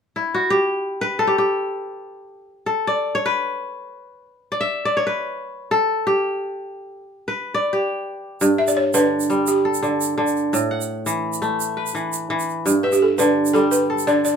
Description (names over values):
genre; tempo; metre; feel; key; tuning
west african traditional, West African string and xylophone music; free time; none; none; G lydian; A4 = 440 Hz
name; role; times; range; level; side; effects
kora; arpeggios; 0.2-14.4 s; G2 to F#5; -20 LUFS; equal; none
tube shaker; percussion; 8.4-14.3 s; none; -27 LUFS; right 9 dB; none
balafon; melody; 8.6-14.4 s; G4 to E5; -19 LUFS; equal; none
room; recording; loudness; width
light reverb; minimal, uncompressed stereo recording; -18 LUFS; side -7 dB against mid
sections
0.0-8.4 A section; 8.4-14.4 B section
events
kora solo 0.0-8.4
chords
0.0 N.C.; 8.4 G; 10.5 A5; 12.7 G